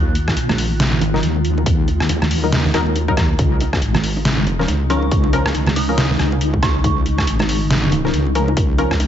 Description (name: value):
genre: deep dubstep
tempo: 139 BPM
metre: 4/4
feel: swing 59% on 16ths, half-time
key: unclear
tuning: A4 = 441 Hz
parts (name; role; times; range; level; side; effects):
- dark detuned synth bell; melody; 0.0-0.3, 4.9-7.2 s; Db6 to Gb6; -29 LUFS; right 5 dB; chorus, phaser, dub echo
- granular cloud pad; sustained chords; 0.0-9.1 s; Db3 to F4; -24 LUFS; left 2 dB; built-in reverb
- filtered dub chord stab; stabs; 0.0-9.1 s; F3 to Bb4; -23 LUFS; left 2 dB; chorus, dub echo
- wobble bass; bass; 0.0-9.1 s; Ab1 to Eb2; -19 LUFS; equal; chorus
- trip hop sampler-style drum kit; drums; 0.2-9.1 s; hi-hat, rim click, snare drum; -21 LUFS; equal; none
- electronic kick drum; drums; 0.3-9.0 s; none; -19 LUFS; equal; none
- bongos and congas; percussion; 0.3-9.1 s; none; -25 LUFS; right 4 dB; dub echo
room: digital ambience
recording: nothing above 7.7 kHz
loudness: -15 LUFS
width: side -10 dB against mid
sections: 0.0-9.1 A section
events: none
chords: 0.0 Ebm; 3.4 Db6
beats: 0.37 0.80 1.23 | 1.66 2.09 2.53 2.96 | 3.39 3.82 4.25 4.68 | 5.12 5.55 5.98 6.41 | 6.84 7.27 7.71 8.14 | 8.57 9.00